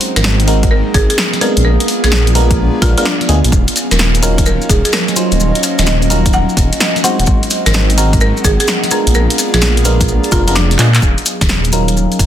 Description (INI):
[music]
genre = UK garage, two-step garage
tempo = 128 BPM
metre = 4/4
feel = swing 66% on 16ths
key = unclear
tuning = A4 = 440 Hz
[part]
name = airy breathy pad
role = sustained chords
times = 0.0-11.0 s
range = Gb3 to Ab4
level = -27 LUFS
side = equal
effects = none
[part]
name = FM electric piano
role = stabs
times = 0.0-12.2 s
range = Gb3 to C5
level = -19 LUFS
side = equal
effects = chorus, phaser, low-pass filter, dub echo
[part]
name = punchy analog drum machine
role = drums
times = 0.0-12.3 s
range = handclaps, hi-hat, snare drum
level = -16 LUFS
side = equal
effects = none
[part]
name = warbly tape-like pad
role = texture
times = 0.0-12.3 s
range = Gb3 to Gb5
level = -21 LUFS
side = right 2 dB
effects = chorus, built-in reverb, sidechain pumping
[part]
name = buzzing marimba with medium hard mallets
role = melody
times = 0.2-11.0 s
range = D4 to Gb5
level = -20 LUFS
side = right 1 dB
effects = dub echo
[part]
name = dark detuned saw bass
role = bass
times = 0.2-12.3 s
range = Eb1 to Bb2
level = -13 LUFS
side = equal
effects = none
[part]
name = electronic kick drum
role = drums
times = 0.6-12.3 s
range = none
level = -14 LUFS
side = equal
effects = none
[part]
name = maracas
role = percussion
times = 3.5-12.3 s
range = none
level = -21 LUFS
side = left 2 dB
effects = none
[sound]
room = digital ambience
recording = dense, heavily limited modern master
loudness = -10 LUFS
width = side -10 dB against mid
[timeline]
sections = 0.0-11.0 A section; 11.0-12.3 B section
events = drop 0.0-11.0; drum fill 10.8; filter sweep on FM electric piano 11.0-12.3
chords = 0.0 Ab7; 1.4 Bb7b9; 3.5 Ebm7; 7.3 Ab7; 8.9 Bb7b9; 11.0 Ebm7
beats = 0.24 0.71 1.18 | 1.65 2.12 2.58 3.05 | 3.52 3.99 4.46 4.93 | 5.40 5.87 6.33 6.80 | 7.27 7.74 8.21 8.68 | 9.15 9.62 10.09 10.55 | 11.02 11.49 11.96